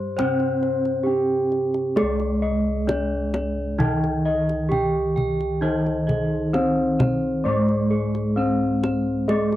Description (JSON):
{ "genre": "Javanese gamelan", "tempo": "66 BPM", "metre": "4/4", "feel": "straight", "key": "C pelog", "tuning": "A4 = 445 Hz", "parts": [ { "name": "gamelan-type bronze metallophone", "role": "melody", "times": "0.0-9.6 s", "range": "Ab3 to C5", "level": "-24 LUFS", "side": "equal", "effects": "none" }, { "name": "gamelan-type bronze metallophone", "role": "accompaniment", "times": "0.0-9.6 s", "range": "Eb3 to C4", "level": "-26 LUFS", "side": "right 1 dB", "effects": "cassette tape" }, { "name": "gamelan-type bossed gongs", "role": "bass", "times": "0.0-9.6 s", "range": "C2 to Ab4", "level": "-28 LUFS", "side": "left 1 dB", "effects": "transformer saturation" }, { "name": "gamelan-type bossed gongs", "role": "arpeggios", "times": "0.2-9.6 s", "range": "Ab4 to G5", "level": "-29 LUFS", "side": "left 3 dB", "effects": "cassette tape" }, { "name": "kendang", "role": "percussion", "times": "0.2-9.6 s", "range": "none", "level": "-26 LUFS", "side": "equal", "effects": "none" }, { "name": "gamelan-type bronze metallophone", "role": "arpeggios", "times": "2.0-9.6 s", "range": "Ab4 to G5", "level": "-32 LUFS", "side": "right 3 dB", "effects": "cassette tape" } ], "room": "wet booth ambience, RT60 0.2 s", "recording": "home recording on cassette", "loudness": "-20 LUFS", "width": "side -14 dB against mid", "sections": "0.0-2.0 A section; 2.0-9.6 B section", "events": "none", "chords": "none" }